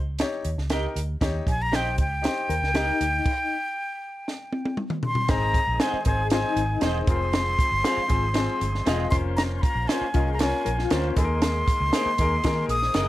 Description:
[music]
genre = uptempo 1960s-style soul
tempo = 118 BPM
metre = 4/4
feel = straight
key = unclear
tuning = A4 = 445 Hz
[part]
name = vintage muted fingered electric bass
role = bass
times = 0.0-13.1 s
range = Fb1 to Eb3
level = -28 LUFS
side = right 1 dB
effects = none
[part]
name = clear baby grand piano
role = accompaniment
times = 0.2-13.1 s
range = Bb3 to Eb5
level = -30 LUFS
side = left 4 dB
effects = none
[part]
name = compact cocktail drum kit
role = drums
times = 0.2-13.1 s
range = crash cymbal, hi-hat, kick drum, snare drum, toms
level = -26 LUFS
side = right 1 dB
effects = none
[part]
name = electric guitar through a small old amp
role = stabs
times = 0.7-13.1 s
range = Db4 to F5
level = -33 LUFS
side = right 8 dB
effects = analog chorus
[part]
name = breathy concert flute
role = melody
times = 1.5-13.1 s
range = G5 to Eb6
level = -26 LUFS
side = equal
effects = none
[part]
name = mellow electric guitar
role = riff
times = 2.5-7.0, 10.1-13.1 s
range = Eb4 to C5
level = -31 LUFS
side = left 8 dB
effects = tremolo
[part]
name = overdriven tonewheel organ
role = sustained chords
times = 5.3-13.1 s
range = Eb3 to C5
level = -38 LUFS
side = right 1 dB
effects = slow rotary speaker
[sound]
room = light reverb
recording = none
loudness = -22 LUFS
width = side -15 dB against mid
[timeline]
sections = 0.0-5.3 A section; 5.3-13.1 B section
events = stop 3.3-5.3; drum fill 4.3-5.3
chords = 0.0 Eb; 5.3 Ab; 7.1 Fm; 9.1 Bbmadd9/F; 11.2 Ebsus4

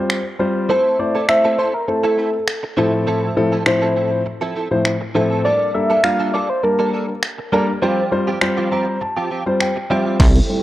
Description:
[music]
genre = dance-pop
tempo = 101 BPM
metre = 4/4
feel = straight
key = unclear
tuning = A4 = 440 Hz
[part]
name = dark grand piano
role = accompaniment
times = 0.0-10.6 s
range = A2 to Bb5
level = -19 LUFS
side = left 1 dB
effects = sidechain pumping, low-pass filter
[part]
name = punchy analog drum machine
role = drums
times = 0.1-10.5 s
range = crash cymbal, finger snaps, hi-hat, kick drum, snare drum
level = -19 LUFS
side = equal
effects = none
[part]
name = soft struck synth lead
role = melody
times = 0.7-7.5 s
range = A4 to F5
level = -18 LUFS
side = equal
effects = chorus
[part]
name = direct-recorded clean electric guitar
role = riff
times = 0.7-10.5 s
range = F3 to A4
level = -24 LUFS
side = right 4 dB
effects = ensemble chorus, low-pass filter
[part]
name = sweeping resonant pad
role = sustained chords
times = 10.2-10.6 s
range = A4 to C6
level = -24 LUFS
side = right 5 dB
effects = chorus, sidechain pumping, low-pass filter
[part]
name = mallet-like synth pluck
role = arpeggios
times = 10.2-10.6 s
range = C5 to G5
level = -37 LUFS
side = left 1 dB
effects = none
[part]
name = plucky analog bass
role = bass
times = 10.2-10.4 s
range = C2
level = -14 LUFS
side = equal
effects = sidechain pumping
[part]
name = riser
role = sound effects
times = 10.4-10.6 s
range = none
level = -37 LUFS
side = right 1 dB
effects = none
[sound]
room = moderate plate reverb, RT60 2.1 s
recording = worn, warbling old tape, cassette tape, warbly pitch drift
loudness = -16 LUFS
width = side -15 dB against mid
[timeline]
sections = 0.0-10.2 A section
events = grand piano fill 8.4-10.2; kick muted 9.0-10.2; drum fill 10.2-10.6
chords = 0.0 Csus4; 0.7 Am; 2.8 Fmaj7/A; 5.4 Gmadd9; 7.8 Csus4

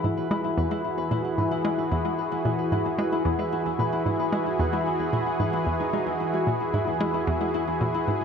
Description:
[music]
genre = ambient, sequencer-driven space music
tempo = 112 BPM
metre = 4/4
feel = straight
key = E major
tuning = A4 = 440 Hz
[part]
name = lush unison pad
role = sustained chords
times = 0.0-8.2 s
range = E3 to G#4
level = -26 LUFS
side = right 1 dB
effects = chorus
[part]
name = Celtic harp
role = arpeggios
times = 0.0-8.2 s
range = E3 to B4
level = -29 LUFS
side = left 4 dB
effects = auto-pan, analog delay
[part]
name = hollow square pluck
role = riff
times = 0.0-8.2 s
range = E2 to G#3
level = -29 LUFS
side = right 1 dB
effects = chorus, analog delay
[part]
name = fat analog bass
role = bass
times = 0.0-8.2 s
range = E2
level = -46 LUFS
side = equal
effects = none
[sound]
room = wet concert hall reverb, RT60 1.9 s, digital ambience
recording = none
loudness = -23 LUFS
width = side -6 dB against mid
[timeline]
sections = 0.0-8.2 A section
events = none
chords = 0.0 Eadd9

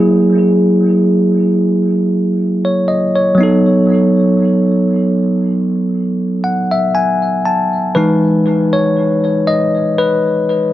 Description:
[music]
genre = R&B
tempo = 59 BPM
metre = 4/4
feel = swing 54% on 16ths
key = E major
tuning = A4 = 440 Hz
[part]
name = bell-like tine electric piano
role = solo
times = 0.0-10.7 s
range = E3 to A5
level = -11 LUFS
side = equal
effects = low-pass filter, tape echo
[sound]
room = moderate echo chamber reverb, RT60 2.4 s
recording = echo-heavy mix, nothing above 7.8 kHz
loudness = -11 LUFS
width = side -14 dB against mid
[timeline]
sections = 0.0-8.0 A section; 8.0-10.7 B section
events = filter sweep on tine electric piano 0.0-8.0; tine electric piano fill 5.9-8.0; tine electric piano solo 8.0-10.7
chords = 0.0 F#9; 3.4 B7/F#; 8.0 Emaj7

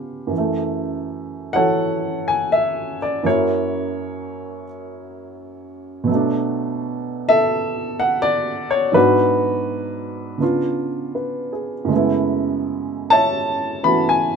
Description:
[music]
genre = solo jazz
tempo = 83 BPM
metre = 4/4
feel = swing 67% on 8ths, rubato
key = F# minor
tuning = A4 = 442 Hz
[part]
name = dark upright piano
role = solo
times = 0.0-14.4 s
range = F#2 to B5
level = -18 LUFS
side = equal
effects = none
[sound]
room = moderate studio reverb, RT60 0.8 s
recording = minimal, uncompressed stereo recording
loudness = -18 LUFS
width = side -6 dB against mid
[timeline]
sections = 0.3-14.4 A section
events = none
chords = 0.3 F#m7; 3.2 F#7; 6.1 Bm7; 9.0 G#m7b5; 10.4 C#7b9; 11.9 F#m11

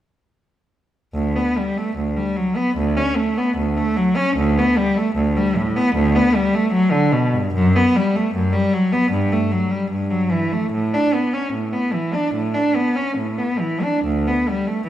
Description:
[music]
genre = classical, baroque-style suite movement for unaccompanied cello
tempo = 74 BPM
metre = 4/4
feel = uneven beats, rubato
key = D major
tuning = A4 = 440 Hz
[part]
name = rich cello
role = solo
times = 1.1-14.9 s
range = D2 to D4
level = -17 LUFS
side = equal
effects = none
[sound]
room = wet stone room reverb, RT60 1.6 s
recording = heard from further back in the room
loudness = -17 LUFS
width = side -12 dB against mid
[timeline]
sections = 1.1-14.9 A section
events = none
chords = none

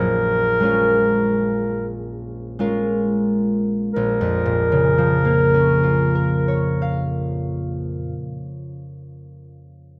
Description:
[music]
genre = classical, impressionist duo for clarinet and harp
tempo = 28-33 BPM (dotted quarters)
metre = 6/8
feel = rubato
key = Bb minor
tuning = A4 = 440 Hz
[part]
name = mellow clarinet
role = melody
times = 0.0-7.2 s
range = Bb4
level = -22 LUFS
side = equal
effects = none
[part]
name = concert harp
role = accompaniment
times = 0.0-9.2 s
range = Bb1 to F5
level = -22 LUFS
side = equal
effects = none
[sound]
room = moderate recital hall reverb, RT60 1.7 s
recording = close, detailed microphones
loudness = -20 LUFS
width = mono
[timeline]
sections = 0.0-4.0 A section; 4.0-7.7 B section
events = slowing down 0.0-4.0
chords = 0.0 Bbm7; 4.0 Bbm

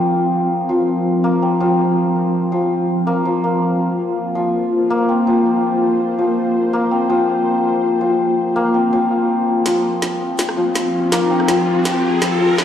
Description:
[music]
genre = half-time drum and bass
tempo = 164 BPM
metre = 4/4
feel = swing 53% on 16ths, half-time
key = unclear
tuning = A4 = 439 Hz
[part]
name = bowed-like drone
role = sustained chords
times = 0.0-12.6 s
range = F3 to C5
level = -18 LUFS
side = left 1 dB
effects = built-in reverb
[part]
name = santur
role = arpeggios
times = 0.0-12.6 s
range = F3 to C4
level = -18 LUFS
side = left 2 dB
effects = low-pass filter, tape echo
[part]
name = drum and bass drum kit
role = drums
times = 9.7-12.6 s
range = hi-hat, rim click, snare drum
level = -22 LUFS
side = equal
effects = overdrive, high-pass filter on hats, high-pass filter on perc, high-pass filter on snare
[part]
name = riser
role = sound effects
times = 10.2-12.6 s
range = none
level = -24 LUFS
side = equal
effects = none
[sound]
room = moderate huge ambient reverb, RT60 3.9 s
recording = played on a big sound system in a bare room, large studio reverb, lossy compression artefacts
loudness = -15 LUFS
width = side -9 dB against mid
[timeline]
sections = 0.0-9.7 A section; 9.7-12.6 B section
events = filter sweep on synth drone 0.0-9.7; build-up 9.7-12.6; drum fill 9.7-12.6; riser 10.2-12.6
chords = 0.0 F5

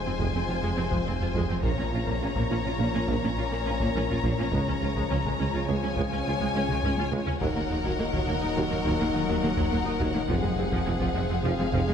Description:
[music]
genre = cinematic, hybrid orchestral and electronic film score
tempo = 104 BPM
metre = 5/4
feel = straight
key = Eb dorian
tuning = A4 = 438 Hz
[part]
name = dark symphonic violin section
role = melody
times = 0.0-11.9 s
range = F5 to Bb5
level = -34 LUFS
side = left 5 dB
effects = none
[part]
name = warm symphonic violin section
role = second line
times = 0.0-11.9 s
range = Ab4 to Db5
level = -36 LUFS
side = left 5 dB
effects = none
[part]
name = ethereal airy pad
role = sustained chords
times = 0.0-11.9 s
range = F3 to Eb5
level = -36 LUFS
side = left 1 dB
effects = ensemble chorus, built-in reverb
[part]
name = mellow French horn section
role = sustained chords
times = 0.0-11.9 s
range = Ab3 to Eb4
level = -36 LUFS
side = left 6 dB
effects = none
[part]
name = warm trombone section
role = sustained chords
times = 0.0-11.9 s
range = Bb2 to Gb3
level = -38 LUFS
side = right 3 dB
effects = none
[part]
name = tight sequenced synth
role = arpeggios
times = 0.0-11.9 s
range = Db3 to F4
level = -39 LUFS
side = right 1 dB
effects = none
[part]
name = phased detuned saw bass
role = bass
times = 0.0-11.9 s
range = Eb1 to Db2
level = -36 LUFS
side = left 1 dB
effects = phaser
[part]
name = rich symphonic viola section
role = accompaniment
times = 0.1-11.9 s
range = F3 to F4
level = -35 LUFS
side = right 1 dB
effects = none
[part]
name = smooth synth bass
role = riff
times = 0.1-11.9 s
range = Db2 to Bb3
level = -34 LUFS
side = right 2 dB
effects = none
[part]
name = rich symphonic cello section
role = bass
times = 0.1-11.9 s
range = Db2 to Bb2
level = -33 LUFS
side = right 2 dB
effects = none
[part]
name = rich symphonic double bass section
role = bass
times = 0.2-11.8 s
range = F1 to Eb2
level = -36 LUFS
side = right 3 dB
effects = none
[part]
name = warm tuba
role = bass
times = 0.2-11.8 s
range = F1 to Eb2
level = -36 LUFS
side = right 3 dB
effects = none
[part]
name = solo taiko drums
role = drums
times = 0.2-11.9 s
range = none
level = -34 LUFS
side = left 1 dB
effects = none
[sound]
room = moderate concert hall reverb, RT60 2.0 s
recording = none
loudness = -24 LUFS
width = side -8 dB against mid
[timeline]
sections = 0.0-11.9 A section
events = drum fill 6.7-7.4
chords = 0.0 Fm; 1.6 Bbm; 4.5 Db; 7.4 Ebm; 10.3 Fm

